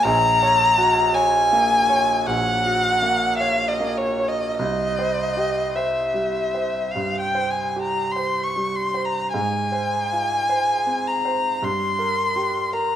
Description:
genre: classical, romantic duo for violin and grand piano.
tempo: 49-55 BPM.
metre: 4/4.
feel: rubato.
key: unclear.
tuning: A4 = 437 Hz.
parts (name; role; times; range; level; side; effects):
warm violin; melody; 0.0-13.0 s; Db5 to Db6; -20 LUFS; left 1 dB; none.
clear concert grand piano; accompaniment; 0.0-13.0 s; Bb1 to Db5; -25 LUFS; right 3 dB; none.
room: moderate recital hall reverb, RT60 1.8 s.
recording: vinyl crackle.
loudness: -19 LUFS.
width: side -10 dB against mid.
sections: 0.0-13.0 A section.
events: none.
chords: 0.1 Gb/Bb; 4.6 C; 9.3 Fm/Ab; 11.6 Edim/G (rootless).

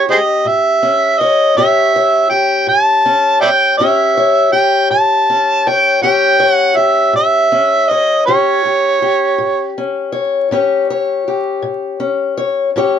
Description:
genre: acoustic country blues, solo or duo.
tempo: 54 BPM (dotted quarters).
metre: 12/8.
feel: straight.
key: A mixolydian.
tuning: A4 = 440 Hz.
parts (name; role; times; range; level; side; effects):
overdriven harmonica; melody; 0.0-9.7 s; G#4 to A5; -11 LUFS; right 2 dB; none.
fingerpicked steel-string acoustic guitar; accompaniment; 0.0-13.0 s; A2 to C#5; -16 LUFS; left 5 dB; none.
room: light reverb.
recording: vinyl crackle.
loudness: -11 LUFS.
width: side -8 dB against mid.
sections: 0.0-13.0 A section.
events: none.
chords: 0.0 A7.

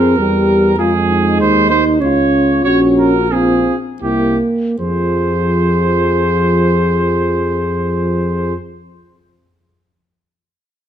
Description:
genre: classical, brass quintet.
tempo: 76-100 BPM.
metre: 3/4.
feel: rubato.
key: F minor.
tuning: A4 = 440 Hz.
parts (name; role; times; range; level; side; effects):
clear trumpet; second line; 0.0-8.5 s; G4 to Db5; -18 LUFS; right 5 dB; none.
dark euphonium; accompaniment; 0.0-8.5 s; F3 to Eb4; -16 LUFS; right 2 dB; none.
mellow French horn; accompaniment; 0.0-8.5 s; Eb4 to Ab4; -18 LUFS; left 7 dB; none.
mellow bass trombone; bass; 0.0-8.6 s; Bb1 to F2; -20 LUFS; right 1 dB; none.
room: moderate recital hall reverb, RT60 1.5 s.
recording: close, detailed microphones.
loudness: -12 LUFS.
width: side -10 dB against mid.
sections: 0.0-4.8 A section; 4.8-9.3 B section.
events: slowing down 0.0-4.8.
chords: 0.0 C7; 0.8 Fm; 2.0 Db; 2.6 Gb/Bb; 4.0 C7; 4.8 Fm.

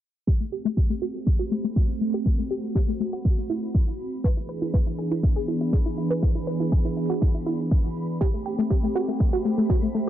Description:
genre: progressive house.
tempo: 121 BPM.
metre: 4/4.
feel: straight.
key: A dorian.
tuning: A4 = 440 Hz.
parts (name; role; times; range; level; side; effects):
lush unison pad; sustained chords; 0.3-10.1 s; E3 to G#4; -29 LUFS; right 2 dB; chorus, sidechain pumping.
analog pluck; arpeggios; 0.3-10.0 s; A3 to B4; -28 LUFS; left 1 dB; chorus, sidechain pumping, dub echo.
electronic kick drum; drums; 0.3-9.8 s; none; -22 LUFS; equal; overdrive.
backwards swelling texture; texture; 1.6-10.1 s; B5; -50 LUFS; equal; built-in reverb, sidechain pumping.
electronic hi-hat; drums; 0.5-10.0 s; none; -66 LUFS; left 1 dB; none.
room: digital ambience.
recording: low-pass filter, nothing above 11.0 kHz.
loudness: -22 LUFS.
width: side -12 dB against mid.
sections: 0.3-10.1 A section.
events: filter sweep on synth pluck 0.3-10.1; filter sweep on analog synth pad 0.3-10.1; filter sweep 0.3-10.1.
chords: 0.3 Am7; 4.2 E7; 8.2 Am7.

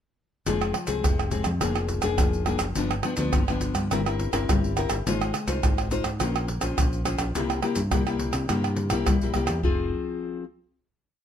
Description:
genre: samba and choro.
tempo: 105 BPM.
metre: 4/4.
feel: straight.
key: F harmonic minor.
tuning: A4 = 445 Hz.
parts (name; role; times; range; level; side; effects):
nylon-string guitar; accompaniment; 0.5-10.4 s; G2 to C5; -28 LUFS; left 5 dB; none.
fingered electric bass; bass; 0.5-9.9 s; F1 to C3; -29 LUFS; equal; none.
maracas, surdo, pandeiro and tamborim; percussion; 0.5-9.8 s; none; -26 LUFS; right 2 dB; none.
room: light reverb.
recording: close, detailed microphones, lossy compression artefacts.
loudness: -23 LUFS.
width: side -9 dB against mid.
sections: 0.5-9.6 groove; 9.6-11.2 final chord.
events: none.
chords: 0.5 Fm; 1.6 Bb7/F; 2.8 G7; 3.9 C7/G; 5.1 Fm7/Ab; 6.2 Bbmadd9; 7.3 C7; 9.6 Fm.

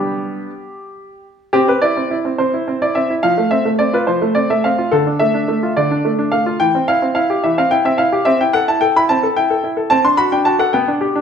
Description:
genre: classical-period piano sonatina.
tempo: 72 BPM (dotted quarters).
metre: 6/8.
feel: straight.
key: C major.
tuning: A4 = 440 Hz.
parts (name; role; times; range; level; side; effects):
bright baby grand piano; solo; 0.0-11.2 s; D3 to C6; -14 LUFS; equal; none.
room: moderate recital hall reverb, RT60 1.4 s.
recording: none.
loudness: -13 LUFS.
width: side -7 dB against mid.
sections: 0.0-1.5 A section; 1.5-11.2 B section.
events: none.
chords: 0.0 G; 1.5 C; 3.2 F; 4.9 Dm; 6.6 C/E; 8.3 Am7/C; 9.9 D7/C.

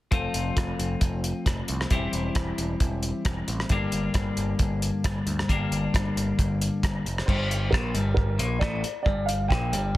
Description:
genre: indie rock.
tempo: 134 BPM.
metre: 4/4.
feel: straight.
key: G minor.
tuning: A4 = 444 Hz.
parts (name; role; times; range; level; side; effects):
twelve-string electric guitar; riff; 0.1-10.0 s; G2 to F4; -28 LUFS; left 2 dB; none.
growling picked electric bass; bass; 0.1-10.0 s; E1 to D2; -30 LUFS; equal; overdrive.
cloth-damped thuddy drum kit; drums; 0.1-10.0 s; crash cymbal, hi-hat, kick drum, rim click; -27 LUFS; equal; soft clipping on snare.
dark upright piano; melody; 7.3-9.9 s; Bb4 to G5; -30 LUFS; right 2 dB; tape echo.
room: light reverb, studio reverb.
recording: dense, heavily limited modern master.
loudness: -24 LUFS.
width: side -16 dB against mid.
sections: 0.1-7.3 A section; 7.3-10.0 B section.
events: none.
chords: 0.1 F; 1.9 C/E; 3.7 Gm; 7.1 N.C.; 7.3 Gm.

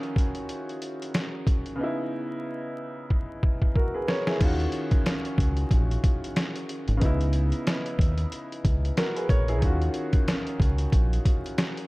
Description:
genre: hip hop, boom-bap hip-hop.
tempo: 92 BPM.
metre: 4/4.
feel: swing 57% on 16ths.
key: Eb minor.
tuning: A4 = 440 Hz.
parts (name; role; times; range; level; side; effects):
warm upright piano; accompaniment; 0.0-11.9 s; Db3 to Db5; -30 LUFS; equal; cassette tape, high-pass filter, low-pass filter.
trip hop sampler-style drum kit; drums; 0.0-11.9 s; crash cymbal, hi-hat, kick drum, snare drum; -25 LUFS; equal; none.
deep dub fingered electric bass; bass; 4.4-11.2 s; Ab1 to Eb2; -25 LUFS; equal; none.
room: digital ambience.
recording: dark, warm production, vinyl crackle.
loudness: -23 LUFS.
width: side -22 dB against mid.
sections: 0.0-4.4 A section; 4.4-11.9 B section.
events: break 0.0-4.4; drum fill 3.1-4.4.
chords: 0.0 Ebm9; 1.8 Dbm9; 4.4 Ebm9; 7.0 Dbm9; 9.6 Ebm9.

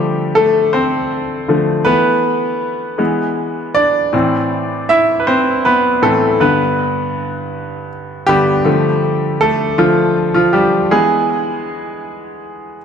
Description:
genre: pop.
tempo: 53 BPM (dotted quarters).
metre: 6/8.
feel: straight.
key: unclear.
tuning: A4 = 439 Hz.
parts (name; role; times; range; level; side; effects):
bright grand piano; solo; 0.0-12.8 s; G2 to E5; -13 LUFS; equal; ping-pong delay.
room: moderate scoring stage reverb, RT60 1.6 s.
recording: none.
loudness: -12 LUFS.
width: side -7 dB against mid.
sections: 0.0-12.8 A section.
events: grand piano solo 0.0-12.8.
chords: 0.0 Dm; 1.9 Esus4; 3.0 E; 4.1 Am; 6.4 G; 8.7 Dm; 10.9 E.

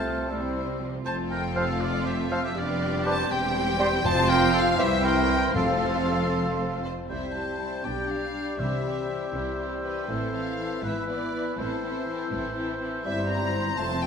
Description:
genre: quick classical-period movement for symphony orchestra.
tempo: 80 BPM (dotted quarters).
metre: 6/8.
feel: straight.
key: F major, C major from 7.1 s.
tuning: A4 = 440 Hz.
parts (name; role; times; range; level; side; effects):
rich chamber violin section; melody; 0.0-14.1 s; B4 to Bb5; -32 LUFS; left 3 dB; none.
rich studio violin section; second line; 0.0-14.1 s; G3 to C5; -35 LUFS; left 2 dB; none.
silver concert flute; second line; 0.0-14.1 s; C6 to G6; -36 LUFS; equal; none.
warm clarinet; second line; 0.0-14.1 s; E4 to C5; -36 LUFS; left 1 dB; none.
warm oboe; second line; 0.0-14.1 s; F4 to D5; -34 LUFS; right 2 dB; none.
rich studio viola section; accompaniment; 0.0-14.1 s; E3 to D4; -35 LUFS; right 2 dB; none.
warm bassoon; accompaniment; 0.0-14.1 s; E3 to A3; -34 LUFS; equal; none.
dark French horn section; sustained chords; 0.0-14.1 s; B3 to A4; -33 LUFS; left 2 dB; none.
warm trumpet section; stabs; 0.0-6.8 s; D5 to A5; -33 LUFS; equal; none.
rich chamber double bass section; bass; 0.0-14.1 s; E1 to C2; -34 LUFS; right 2 dB; none.
rich studio cello section; bass; 0.0-14.1 s; C2 to C3; -34 LUFS; right 3 dB; none.
timpani; percussion; 4.0-6.3, 8.6-9.3 s; F2 to C3; -34 LUFS; left 1 dB; none.
room: wet scoring stage reverb, RT60 1.8 s.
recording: none.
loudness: -24 LUFS.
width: side -6 dB against mid.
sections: 0.0-7.1 A section; 7.1-14.1 B section.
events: none.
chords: 0.3 C; 1.1 F; 2.6 G7/F; 3.3 C/E; 4.0 F5; 4.8 C; 5.6 F; 7.1 C; 7.9 G7/B; 8.6 C; 10.1 Am; 10.8 E7/G#; 11.6 Am; 13.1 C7/G.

